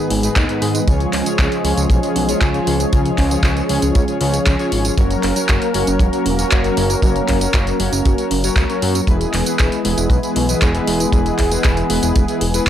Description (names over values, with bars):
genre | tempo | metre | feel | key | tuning
italo disco | 117 BPM | 4/4 | straight | unclear | A4 = 442 Hz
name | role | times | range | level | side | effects
warm analog pad | sustained chords | 0.0-12.7 s | D#3 to A#4 | -20 LUFS | equal | chorus
analog synth brass | stabs | 0.0-12.7 s | G#2 to C#5 | -23 LUFS | left 2 dB | chorus, tape echo
soft round pluck | arpeggios | 0.1-12.7 s | E#3 to E#5 | -27 LUFS | right 4 dB | chorus, tape echo
fat analog bass | bass | 0.1-12.7 s | E1 to G#2 | -21 LUFS | equal | none
house drum kit | drums | 0.1-12.7 s | handclaps, hi-hat, tambourine | -22 LUFS | equal | none
kick drum | drums | 0.4-12.7 s | none | -16 LUFS | equal | none
room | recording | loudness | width
little or no reverb | dry, gritty hardware recording, transformer saturation | -14 LUFS | side -10 dB against mid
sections
0.0-12.7 A section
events
none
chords
0.0 G#m; 0.9 C#; 5.0 F#; 9.1 E